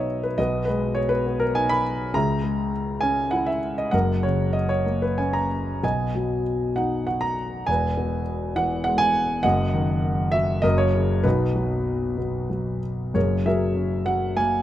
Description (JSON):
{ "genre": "classical, lyrical solo piano", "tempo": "90-104 BPM", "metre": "3/4", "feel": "rubato", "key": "B major", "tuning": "A4 = 440 Hz", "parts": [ { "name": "dark grand piano", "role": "solo", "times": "0.0-14.6 s", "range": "E1 to B5", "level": "-21 LUFS", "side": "equal", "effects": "none" } ], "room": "light reverb", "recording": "close, detailed microphones", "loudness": "-21 LUFS", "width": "side -12 dB against mid", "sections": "0.0-13.2 A section; 13.2-14.6 B section", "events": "none", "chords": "0.4 G#m/B; 2.1 C#m; 3.9 F#; 5.8 B; 7.7 E; 9.4 D#m/F#; 10.6 F#; 11.3 B; 13.2 F#add9" }